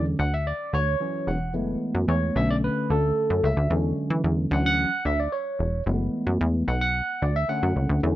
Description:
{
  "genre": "early-eighties boogie funk",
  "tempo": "111 BPM",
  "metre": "4/4",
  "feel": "straight",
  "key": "unclear",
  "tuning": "A4 = 440 Hz",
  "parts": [
    { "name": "barky tine electric piano", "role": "accompaniment", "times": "0.0-8.2 s", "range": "D3 to F#5", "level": "-25 LUFS", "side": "equal", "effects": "phaser, plate reverb" },
    { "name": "plucky analog bass", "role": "bass", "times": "0.0-8.2 s", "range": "E1 to E3", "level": "-24 LUFS", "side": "equal", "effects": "none" }
  ],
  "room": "light reverb",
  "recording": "rough home demo mix",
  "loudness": "-22 LUFS",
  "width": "side -14 dB against mid",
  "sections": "0.0-8.2 A section",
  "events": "tine electric piano solo 0.0-8.2",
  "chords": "0.2 Dmaj9; 1.5 F#m11; 2.4 Bm7; 3.7 E13; 4.5 Dmaj9; 5.9 F#m11; 6.7 Bm7"
}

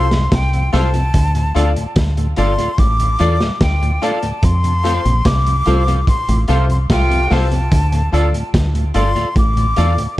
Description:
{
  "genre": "roots reggae",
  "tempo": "73 BPM",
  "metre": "4/4",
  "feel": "straight",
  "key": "D minor",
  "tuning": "A4 = 438 Hz",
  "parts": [
    { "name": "breathy silver concert flute", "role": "melody", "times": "0.0-10.2 s", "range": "G5 to D6", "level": "-21 LUFS", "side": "left 1 dB", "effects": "tape echo" },
    { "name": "clean electric guitar", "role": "accompaniment", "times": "0.0-9.9 s", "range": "F4 to F5", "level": "-26 LUFS", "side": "right 4 dB", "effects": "analog chorus, tape echo" },
    { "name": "bright concert grand piano", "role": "stabs", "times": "0.0-9.9 s", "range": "F4 to D5", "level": "-25 LUFS", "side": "left 6 dB", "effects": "none" },
    { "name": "deep dub fingered electric bass", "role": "bass", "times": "0.0-10.0 s", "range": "G1 to F2", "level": "-15 LUFS", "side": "equal", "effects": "none" },
    { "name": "mellow tonewheel organ", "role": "accompaniment", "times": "0.1-10.1 s", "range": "D2 to F4", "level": "-25 LUFS", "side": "equal", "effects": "slow rotary speaker, tape echo" },
    { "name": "crunchy breakbeat drum kit", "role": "drums", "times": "0.1-10.2 s", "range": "hi-hat, kick drum, snare drum", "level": "-19 LUFS", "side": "equal", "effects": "tape echo" },
    { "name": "mellow horn section", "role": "second line", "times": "6.5-7.5 s", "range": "C3 to F4", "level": "-25 LUFS", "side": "equal", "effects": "tape echo" }
  ],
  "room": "small room reverb",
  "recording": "dark, warm production",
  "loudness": "-13 LUFS",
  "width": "side -16 dB against mid",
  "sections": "0.0-10.2 A section",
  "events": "band accent 4.4-7.7",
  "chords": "0.0 F; 1.1 Dm; 4.4 F; 7.7 Dm"
}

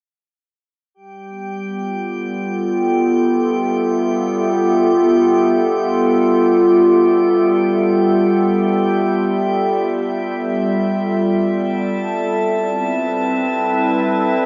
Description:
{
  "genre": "ambient",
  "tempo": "free time",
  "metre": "none",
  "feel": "none",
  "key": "F lydian",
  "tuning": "A4 = 438 Hz",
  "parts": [
    { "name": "drifting glass-harmonics texture", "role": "texture", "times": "1.1-14.5 s", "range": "G4 to A5", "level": "-25 LUFS", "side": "equal", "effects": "chorus, built-in reverb, shimmer reverb" },
    { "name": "evolving wavetable pad", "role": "sustained chords", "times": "1.6-14.5 s", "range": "G3 to E5", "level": "-18 LUFS", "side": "equal", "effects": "chorus, built-in reverb, shimmer reverb" }
  ],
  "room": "wet lush hall reverb, RT60 2.5 s",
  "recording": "dark, warm production",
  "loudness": "-17 LUFS",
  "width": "mono",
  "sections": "0.9-14.5 A section",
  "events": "fade-out on synth texture 0.9-14.5; filter sweep on ambient pad 0.9-14.5",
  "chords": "0.9 Fmaj9#11; 11.6 Cmaj7"
}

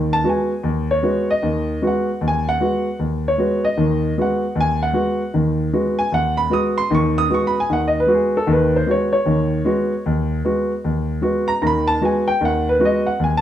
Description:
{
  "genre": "jazz",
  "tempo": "153 BPM",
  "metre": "4/4",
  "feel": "swing 64% on 8ths",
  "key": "G# minor",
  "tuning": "A4 = 439 Hz",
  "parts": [
    { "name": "warm baby grand piano", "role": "solo", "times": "0.0-13.4 s", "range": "D#2 to D#6", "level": "-16 LUFS", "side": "equal", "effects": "none" }
  ],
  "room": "wet studio reverb, RT60 0.7 s",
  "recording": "heard from further back in the room",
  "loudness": "-17 LUFS",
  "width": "side -11 dB against mid",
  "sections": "0.0-13.4 A section",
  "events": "none",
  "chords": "0.0 G#m7"
}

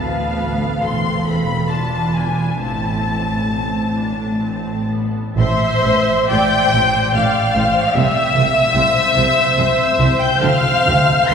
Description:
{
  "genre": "classical, slow romantic movement for string orchestra",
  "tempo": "61-76 BPM",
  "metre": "3/4",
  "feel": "rubato",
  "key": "A minor",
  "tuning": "A4 = 439 Hz",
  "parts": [
    { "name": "rich symphonic violin section", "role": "melody", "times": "0.0-11.3 s", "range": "F5 to C7", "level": "-21 LUFS", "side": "left 5 dB", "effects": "none" },
    { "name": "rich symphonic violin section", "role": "second line", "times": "0.0-11.3 s", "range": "C5 to C6", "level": "-19 LUFS", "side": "left 1 dB", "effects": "none" },
    { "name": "clear symphonic viola section", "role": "accompaniment", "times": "0.0-11.3 s", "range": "B3 to E5", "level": "-23 LUFS", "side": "right 2 dB", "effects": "none" },
    { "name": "rich symphonic double bass section", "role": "bass", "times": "0.0-11.3 s", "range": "E1 to D2", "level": "-21 LUFS", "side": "right 2 dB", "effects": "none" },
    { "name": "warm studio cello section", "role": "bass", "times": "0.0-11.3 s", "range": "D2 to D3", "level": "-22 LUFS", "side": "equal", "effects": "none" }
  ],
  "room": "wet cathedral reverb, RT60 5.8 s",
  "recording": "heard from further back in the room",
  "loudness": "-14 LUFS",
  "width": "side -6 dB against mid",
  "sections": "0.0-5.4 A section; 5.4-11.3 A section",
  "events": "none",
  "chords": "0.0 Bdim/D; 0.8 Am/E; 1.7 E7b9; 2.6 Am; 7.9 C; 10.4 Dm7"
}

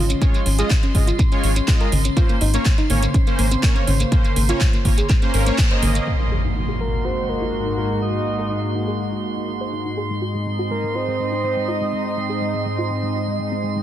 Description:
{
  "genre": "progressive house",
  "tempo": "123 BPM",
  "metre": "4/4",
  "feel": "straight",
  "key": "unclear",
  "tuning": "A4 = 436 Hz",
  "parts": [
    { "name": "lush unison pad", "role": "sustained chords", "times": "0.0-13.8 s", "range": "Ab2 to Eb5", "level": "-25 LUFS", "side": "equal", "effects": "chorus, sidechain pumping" },
    { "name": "soft round pluck", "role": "arpeggios", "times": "0.0-13.8 s", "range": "Ab3 to C5", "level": "-28 LUFS", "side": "equal", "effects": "wide subtle chorus, cassette tape, sidechain pumping, digital delay" },
    { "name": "round analog bass", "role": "bass", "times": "0.0-6.0 s", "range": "Ab1", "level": "-19 LUFS", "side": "equal", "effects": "sidechain pumping" },
    { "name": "drifting glass-harmonics texture", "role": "texture", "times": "0.0-13.8 s", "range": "C6", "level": "-32 LUFS", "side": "right 4 dB", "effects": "chorus, built-in reverb, sidechain pumping" },
    { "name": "house drum kit", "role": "drums", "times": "0.1-6.2 s", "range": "crash cymbal, handclaps, hi-hat", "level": "-26 LUFS", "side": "right 2 dB", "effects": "sidechain pumping on hats, low-pass filter on hats, low-pass filter on snare, sidechain pumping on cymbals, low-pass filter on cymbals" },
    { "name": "shekere", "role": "percussion", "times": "0.1-6.0 s", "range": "none", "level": "-33 LUFS", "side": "right 2 dB", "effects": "none" },
    { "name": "soft supersaw", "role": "stabs", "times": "0.2-6.0 s", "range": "Ab3 to Eb5", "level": "-26 LUFS", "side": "right 1 dB", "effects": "sidechain pumping, digital delay" },
    { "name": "electronic kick drum", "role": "drums", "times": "0.2-5.7 s", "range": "none", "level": "-17 LUFS", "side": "equal", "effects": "none" },
    { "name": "congas", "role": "percussion", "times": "0.9-5.9 s", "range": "none", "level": "-28 LUFS", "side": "right 3 dB", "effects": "sidechain pumping on perc" },
    { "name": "impact", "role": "sound effects", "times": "6.1-8.0 s", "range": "none", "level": "-25 LUFS", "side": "equal", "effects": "none" },
    { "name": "soft octave-layered synth lead", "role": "melody", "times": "6.8-12.2 s", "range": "Bb4 to Eb5", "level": "-26 LUFS", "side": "equal", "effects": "chorus, digital delay" }
  ],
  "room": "light reverb",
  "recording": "dense, heavily limited modern master",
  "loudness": "-18 LUFS",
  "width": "side -12 dB against mid",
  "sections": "0.0-6.1 A section; 6.1-13.8 B section",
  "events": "filter sweep on analog synth pad 0.0-6.1; band accent 5.6; impact 6.1-8.0; filter sweep on synth pluck 6.1-13.8",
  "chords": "0.0 Db/Ab; 2.2 Bbmadd9/Ab; 6.1 Ebm/Ab; 10.0 Ab"
}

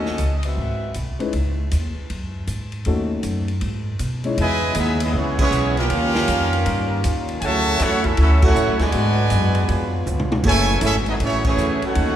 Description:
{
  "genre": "jazz, big band swing",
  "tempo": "158 BPM",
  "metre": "4/4",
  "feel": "swing 66% on 8ths",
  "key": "C# minor",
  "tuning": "A4 = 444 Hz",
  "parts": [
    { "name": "warm saxophone section", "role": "melody", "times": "0.0-1.0 s", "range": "B#3 to E5", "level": "-30 LUFS", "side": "left 1 dB", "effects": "none" },
    { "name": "warm baby grand piano", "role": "accompaniment", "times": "0.0-4.4 s", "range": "G#3 to C#5", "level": "-28 LUFS", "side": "left 4 dB", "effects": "none" },
    { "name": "upright bass", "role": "bass", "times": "0.0-12.2 s", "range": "F#1 to B2", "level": "-21 LUFS", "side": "equal", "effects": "none" },
    { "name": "vintage drum kit", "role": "drums", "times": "0.1-12.1 s", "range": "crash cymbal, hi-hat, kick drum, ride cymbal, snare drum, toms", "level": "-27 LUFS", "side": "equal", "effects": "none" },
    { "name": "bright trumpet section", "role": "melody", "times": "4.4-12.2 s", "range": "A3 to A5", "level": "-22 LUFS", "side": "equal", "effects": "none" },
    { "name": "warm trombone section", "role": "second line", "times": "4.4-12.2 s", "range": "B2 to F#4", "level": "-24 LUFS", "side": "right 3 dB", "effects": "none" },
    { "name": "clear trombone section", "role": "sustained chords", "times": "4.4-12.2 s", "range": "C#3 to F#4", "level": "-29 LUFS", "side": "left 2 dB", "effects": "none" }
  ],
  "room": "moderate church reverb, RT60 3.4 s",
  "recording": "recorded in a church or concert hall",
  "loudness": "-18 LUFS",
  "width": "side -11 dB against mid",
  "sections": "0.0-4.4 A section; 4.4-12.2 B section",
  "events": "band accent 5.3, 8.4, 11.4; drum fill 10.1-10.4",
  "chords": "0.0 D#m7b5; 0.6 G#7alt; 1.3 C#sus2; 2.9 D#m7b5; 3.6 G#m; 4.4 C#m9; 5.9 D#9; 7.4 Dmaj9; 8.9 G#m7b5; 9.7 C#7b9; 10.4 F#m9"
}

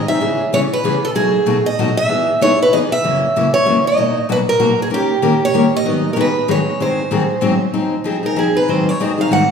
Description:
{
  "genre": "jazz",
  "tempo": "191 BPM",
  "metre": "3/4",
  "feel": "swing 59% on 8ths",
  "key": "C# minor",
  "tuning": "A4 = 440 Hz",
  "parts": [
    { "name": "picked steel-string acoustic guitar", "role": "melody", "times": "0.0-9.5 s", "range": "G4 to Gb5", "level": "-16 LUFS", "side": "right 2 dB", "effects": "none" },
    { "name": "picked steel-string acoustic guitar", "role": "accompaniment", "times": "0.1-9.4 s", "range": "F#2 to A#4", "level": "-16 LUFS", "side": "left 2 dB", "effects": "none" }
  ],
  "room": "wet recital hall reverb, RT60 1.5 s",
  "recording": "recorded in a church or concert hall",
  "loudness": "-13 LUFS",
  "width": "side -6 dB against mid",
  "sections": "0.2-7.7 A section; 7.7-9.5 B section",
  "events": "steel-string acoustic guitar solo 7.7-9.5",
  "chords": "0.2 C#m7; 1.1 B7; 2.1 Emaj7; 3.0 F#7; 4.0 Bmaj7; 4.9 D#7; 5.9 G#m7; 6.8 G#7; 7.7 Fm7; 8.7 Ab7"
}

